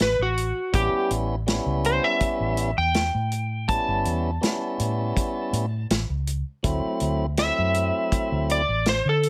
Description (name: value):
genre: straight-eighth soul blues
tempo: 81 BPM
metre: 4/4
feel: straight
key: A mixolydian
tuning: A4 = 440 Hz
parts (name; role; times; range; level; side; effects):
- electric slide guitar; melody; 0.0-9.3 s; F#4 to A5; -27 LUFS; equal; plate reverb
- vintage muted fingered electric bass; bass; 0.0-9.3 s; G1 to D3; -29 LUFS; equal; none
- warm soul drum kit; drums; 0.0-9.3 s; hi-hat, kick drum, snare drum; -28 LUFS; equal; none
- tonewheel organ; accompaniment; 0.7-8.6 s; F#3 to E4; -30 LUFS; equal; overdrive, stopped rotary speaker, plate reverb
room: moderate studio reverb, RT60 0.5 s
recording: none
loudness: -24 LUFS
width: mono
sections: 0.0-9.3 A section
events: electric slide guitar solo 0.0-9.3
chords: 0.0 A9; 6.6 D9